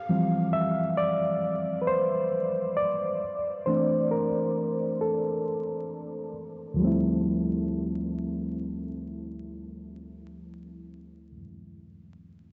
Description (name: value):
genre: hip hop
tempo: 67 BPM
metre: 4/4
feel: swing 57% on 16ths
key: D minor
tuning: A4 = 440 Hz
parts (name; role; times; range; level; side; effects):
- overdriven reed electric piano; accompaniment; 0.0-12.5 s; D2 to F5; -29 LUFS; equal; low-pass filter
room: wet huge ambient reverb, RT60 8.4 s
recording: dreamy mix soaked in reverb, vinyl crackle, nothing above 8.0 kHz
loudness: -28 LUFS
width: mono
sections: 0.0-6.8 A section; 6.8-10.4 B section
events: reed electric piano solo 0.0-6.8; filter sweep on reed electric piano 0.0-6.8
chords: 0.0 Dm11; 3.2 Bbmaj9#11; 6.8 Dm11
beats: 0.53 1.42 2.32 | 3.21 4.11 5.00 5.90 | 6.79 7.69 8.59 9.48